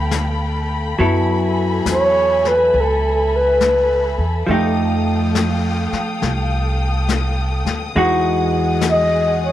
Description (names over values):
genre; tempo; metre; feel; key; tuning
jazz ballad; 69 BPM; 4/4; swing 66% on 8ths; unclear; A4 = 440 Hz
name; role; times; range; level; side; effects
vintage hollow-body jazz guitar; accompaniment; 0.0-9.5 s; E3 to A4; -19 LUFS; equal; none
warm studio string section; sustained chords; 0.0-9.5 s; G#4 to Eb6; -24 LUFS; left 2 dB; none
upright bass; bass; 0.0-9.5 s; C2 to F#2; -21 LUFS; equal; none
vintage brush drum kit; drums; 0.1-9.5 s; brushed snare drum, hi-hat, snare drum; -26 LUFS; left 7 dB; none
breathy flugelhorn; melody; 1.9-9.5 s; A4 to D#5; -15 LUFS; equal; slapback echo
room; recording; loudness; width
light reverb, small room ambience; 1960s-style stereo; -15 LUFS; side -12 dB against mid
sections
0.0-9.5 A section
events
flugelhorn solo 0.0-9.5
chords
0.0 G9; 1.0 F#m11; 4.5 F9; 8.0 Emaj9